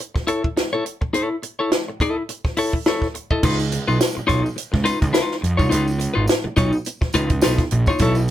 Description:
funk; 105 BPM; 4/4; swing 56% on 16ths; Db mixolydian; A4 = 441 Hz
clean electric guitar; accompaniment; 0.0-8.2 s; Eb4 to Eb5; -21 LUFS; left 2 dB; harmonic tremolo
compact cocktail drum kit; drums; 0.0-8.2 s; crash cymbal, hi-hat, kick drum, snare drum; -21 LUFS; equal
fuzz picked electric bass; bass; 3.4-8.3 s; Ab1 to F2; -21 LUFS; right 2 dB; overdrive
tambourine; percussion; 3.4-8.3 s; -37 LUFS; right 2 dB
moderate studio ambience, RT60 0.5 s; band playing live in one room; -18 LUFS; side -12 dB against mid
0.0-3.4 A section; 3.4-8.3 B section
0.0 A/E; 3.4 Db9
0.00 0.57 | 1.14 1.72 2.29 2.86 | 3.43 4.00 4.58 5.15 | 5.72 6.29 6.86 7.43 | 8.00

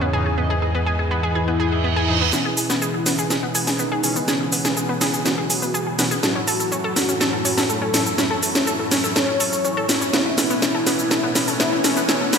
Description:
melodic techno; 123 BPM; 4/4; straight; C# minor; A4 = 440 Hz
fat analog lead; melody; 0.0-12.2 s; C#4 to C#5; -26 LUFS; left 1 dB; ensemble chorus, ping-pong delay
lush unison pad; sustained chords; 0.0-12.4 s; F#2 to G#4; -30 LUFS; right 1 dB; chorus
analog pluck; arpeggios; 0.0-12.4 s; B3 to A4; -25 LUFS; equal; chorus, digital delay
analog synth brass; stabs; 0.0-12.4 s; G#2 to D#5; -27 LUFS; left 1 dB; chorus, digital delay
fat analog bass; bass; 0.0-2.3 s; E2; -23 LUFS; equal
reverse cymbal and riser; sound effects; 1.6-2.3, 12.1-12.4 s; -26 LUFS; right 7 dB
house drum kit; drums; 2.3-12.4 s; hi-hat, shaker, snare drum; -20 LUFS; equal; overdrive, gated reverb
wet lush hall reverb, RT60 2.1 s; bright 1980s-style digital production, high-pass filter; -18 LUFS; side -6 dB against mid
0.0-2.3 A section; 2.3-12.4 B section
reverse cymbal 1.6-2.3; build-up 2.3-12.4; drum fill 2.3-12.4; filter sweep on analog synth lead 2.3-12.4; filter sweep on analog polysynth 2.3-12.4
0.0 Emaj7; 2.3 C#m7; 6.2 F#m7; 10.1 Aadd9
| 0.38 0.87 1.35 1.84 | 2.33 2.82 3.31 3.79 | 4.28 4.77 5.26 5.74 | 6.23 6.72 7.21 7.70 | 8.18 8.67 9.16 9.65 | 10.13 10.62 11.11 11.60 | 12.09

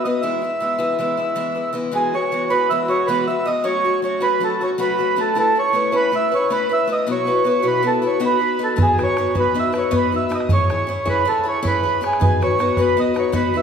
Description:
celtic folk, Celtic slip jig; 105 BPM (dotted quarters); 9/8; straight; E major; A4 = 440 Hz
mellow accordion; melody; 0.0-13.6 s; G#4 to E5; -19 LUFS; right 3 dB
picked acoustic archtop guitar; accompaniment; 0.0-13.6 s; B2 to C#5; -21 LUFS; left 4 dB
bodhran; percussion; 8.8-13.6 s; -22 LUFS; right 1 dB
wet recital hall reverb, RT60 1.6 s; recorded in a church or concert hall; -16 LUFS; side -7 dB against mid
0.0-1.9 A section; 1.9-13.6 A section
0.2 E; 1.9 Eadd9; 3.6 F#m; 5.4 Aadd9; 7.1 Bsus4; 8.2 B; 10.5 C#m; 12.2 B
| 0.23 0.80 1.36 | 1.93 2.50 3.07 | 3.64 4.21 4.78 | 5.35 5.92 6.50 | 7.07 7.64 8.21 | 8.78 9.35 9.92 | 10.49 11.06 11.63 | 12.20 12.77 13.34

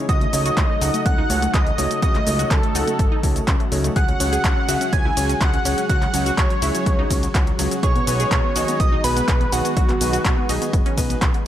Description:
progressive house; 124 BPM; 4/4; straight; A4 = 440 Hz
airy breathy pad; sustained chords; 0.0-11.5 s; C#3 to G#4; -30 LUFS; equal; chorus, sidechain pumping
wide unison pluck; arpeggios; 0.0-11.4 s; F#3 to G#4; -28 LUFS; right 1 dB; sidechain pumping, dub echo
clear baby grand piano; stabs; 0.0-11.2 s; C#4 to F#5; -29 LUFS; left 3 dB; sidechain pumping, dub echo
wide unison lead; melody; 0.1-11.2 s; F#4 to G#5; -25 LUFS; right 1 dB; sidechain pumping, dub echo
soft synth bell; second line; 0.1-11.2 s; F#5 to G#6; -31 LUFS; right 3 dB; chorus, sidechain pumping, dub echo
fat analog bass; bass; 0.1-11.3 s; F#1 to C#2; -25 LUFS; equal; tube saturation, sidechain pumping
deep house drum kit; drums; 0.1-11.4 s; handclaps, hi-hat, ride cymbal, shaker; -26 LUFS; equal; overdrive
electronic kick drum; drums; 0.1-11.3 s; -20 LUFS; equal; overdrive
little or no reverb; -17 LUFS; side -11 dB against mid
0.0-11.5 A section
0.1 D#m7b5/C#; 4.0 F#sus2/C#; 7.8 B6
| 0.09 0.57 1.06 1.54 | 2.02 2.51 2.99 3.48 | 3.96 4.44 4.93 5.41 | 5.90 6.38 6.86 7.35 | 7.83 8.31 8.80 9.28 | 9.77 10.25 10.73 11.22

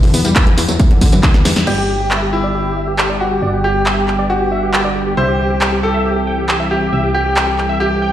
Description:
uplifting trance; 137 BPM; 4/4; straight; G major; A4 = 443 Hz
wide unison pluck; arpeggios; 0.0-1.6 s; D3 to E4; -21 LUFS; left 2 dB; sidechain pumping, tape echo
solid FM bass; bass; 0.0-8.1 s; E1 to F#2; -20 LUFS; equal; sidechain pumping
punchy analog drum machine; drums; 0.0-7.7 s; crash cymbal, handclaps, hi-hat, snare drum, tambourine; -19 LUFS; equal
electronic kick drum; drums; 0.4-1.3 s; -11 LUFS; equal; overdrive
dense compressed supersaw; melody; 1.7-8.1 s; G4 to G5; -20 LUFS; equal; sidechain pumping, low-pass filter, tape echo
bright grand piano; second line; 1.7-8.1 s; E4 to C5; -19 LUFS; left 1 dB; dub echo
lush unison pad; sustained chords; 1.7-8.1 s; D3 to A4; -21 LUFS; right 1 dB; chorus, sidechain pumping
moderate lush hall reverb, RT60 1.6 s; played on a big sound system in a bare room, stone room reverb; -12 LUFS; side -11 dB against mid
0.0-1.7 A section; 1.7-8.1 B section
drum fill 1.3-1.7; band accent 1.6; filter sweep on supersaw synth 1.7-8.1; filter sweep on analog synth pad 1.7-8.1
0.0 Em7; 1.7 G; 5.2 C
0.36 0.80 1.23 | 1.67 2.11 2.55 2.98 | 3.42 3.86 4.30 4.74 | 5.17 5.61 6.05 6.49 | 6.93 7.36 7.80

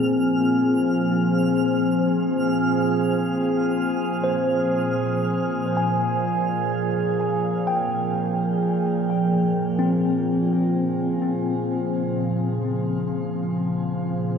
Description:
ambient; free time; Bb dorian; A4 = 441 Hz
evolving wavetable pad; sustained chords; 0.0-14.4 s; Bb2 to Ab4; -21 LUFS; equal; phaser, built-in reverb, shimmer reverb
tine electric piano; arpeggios; 0.0-14.4 s; Bb3 to Ab5; -26 LUFS; left 2 dB; medium stereo tremolo, tape echo, shimmer reverb
twinkling granular texture; texture; 0.0-9.1 s; F6; -35 LUFS; right 1 dB; built-in reverb, shimmer reverb
wet echo chamber reverb, RT60 2.3 s; echo-heavy mix; -20 LUFS; side -7 dB against mid
0.0-9.1 A section; 9.1-14.4 B section
fade-out on synth texture 0.0-9.1; filter sweep on ambient pad 0.0-9.1
0.0 Fm/Bb; 9.1 Bbm9
free time

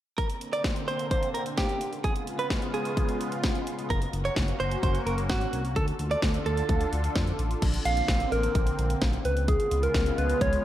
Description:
synth-pop; 129 BPM; 4/4; straight; A4 = 441 Hz
direct-recorded clean electric guitar; second line; 0.2-6.9 s; Gb4 to D5; -31 LUFS; right 3 dB; wide subtle chorus, slapback echo
lush unison pad; sustained chords; 0.4-10.6 s; Db3 to A4; -33 LUFS; equal; chorus, phaser
house drum kit; drums; 0.2-10.6 s; crash cymbal, hi-hat, kick drum, snare drum; -29 LUFS; equal
smooth gliding synth bass; bass; 3.9-10.6 s; Gb1 to F2; -29 LUFS; equal
soft struck synth lead; melody; 7.9-10.6 s; Ab4 to F5; -28 LUFS; right 1 dB; chorus, slapback echo
light reverb, digital ambience; -25 LUFS; side -13 dB against mid
0.2-7.6 A section; 7.6-10.6 B section
0.2 Bbadd9; 1.8 Db7; 3.9 Gb; 5.8 Dm; 7.6 Bbadd9; 9.2 Db7
| 0.18 0.65 1.11 1.58 | 2.04 2.51 2.97 3.44 | 3.90 4.37 4.83 5.30 | 5.76 6.23 6.69 7.16 | 7.62 8.09 8.55 9.02 | 9.48 9.95 10.41

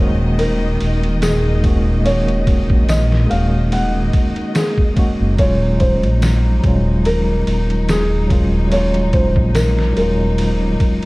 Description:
trip hop; 72 BPM; 4/4; swing 54% on 16ths; Eb dorian; A4 = 440 Hz
felt-muted upright piano; melody; 0.0-10.8 s; Ab4 to Gb5; -22 LUFS; equal; tape echo
tine electric piano; accompaniment; 0.0-11.1 s; Gb3 to Gb4; -21 LUFS; equal; tremolo
warm studio string section; sustained chords; 0.0-11.1 s; Eb3 to Eb5; -28 LUFS; left 1 dB
dark detuned saw bass; bass; 0.0-10.8 s; Eb1 to Bb1; -17 LUFS; equal
trip hop sampler-style drum kit; drums; 0.4-11.1 s; kick drum, ride cymbal, snare drum; -19 LUFS; equal
tambourine; percussion; 1.2-9.7 s; -34 LUFS; left 3 dB
light reverb; dark, warm production, vinyl crackle; -13 LUFS; side -23 dB against mid
0.0-11.1 A section
0.0 Gbadd9/Eb; 5.4 Ebm11
0.39 1.22 | 2.05 2.89 3.72 4.55 | 5.39 6.22 7.05 7.89 | 8.72 9.55 10.39

